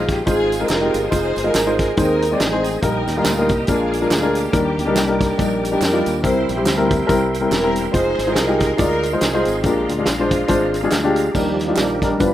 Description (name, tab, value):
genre	uptempo gospel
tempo	141 BPM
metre	4/4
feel	swing 59% on 8ths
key	Eb major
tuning	A4 = 440 Hz
part	warm studio string section	melody	0.0-11.2 s	Ab3 to C5	-23 LUFS	right 1 dB	slapback echo
part	warm baby grand piano	accompaniment	0.0-12.3 s	G2 to Eb5	-18 LUFS	left 2 dB	none
part	bright tonewheel organ	sustained chords	0.0-12.3 s	F3 to Eb6	-30 LUFS	right 4 dB	slow rotary speaker, chorus vibrato
part	modern bright fingered electric bass	bass	0.0-12.3 s	E1 to F2	-26 LUFS	equal	none
part	warm soul drum kit	drums	0.1-12.3 s	crash cymbal, hi-hat, kick drum, snare drum	-22 LUFS	right 1 dB	none
part	tambourine and handclaps	percussion	0.1-12.3 s	none	-34 LUFS	right 7 dB	none
part	mellow French horn section	sustained chords	11.3-12.3 s	Eb3 to D4	-28 LUFS	right 2 dB	none
room	light reverb, small room reverb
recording	rough home demo mix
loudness	-16 LUFS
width	side -12 dB against mid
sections	0.0-11.3 A section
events	none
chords	0.0 Ab6; 1.1 Fm7; 2.0 Ab/Eb; 2.8 Eb/Bb; 3.7 Bb7; 4.5 Ebmaj7; 6.2 C7; 7.9 Fm7; 9.6 Bb7; 11.3 Ebmaj7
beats	0.27 0.70 | 1.12 1.55 1.97 2.40 | 2.83 3.25 3.68 4.10 | 4.53 4.96 5.38 5.81 | 6.23 6.66 7.08 7.51 | 7.94 8.36 8.79 9.21 | 9.64 10.06 10.49 10.92 | 11.35 11.77 12.20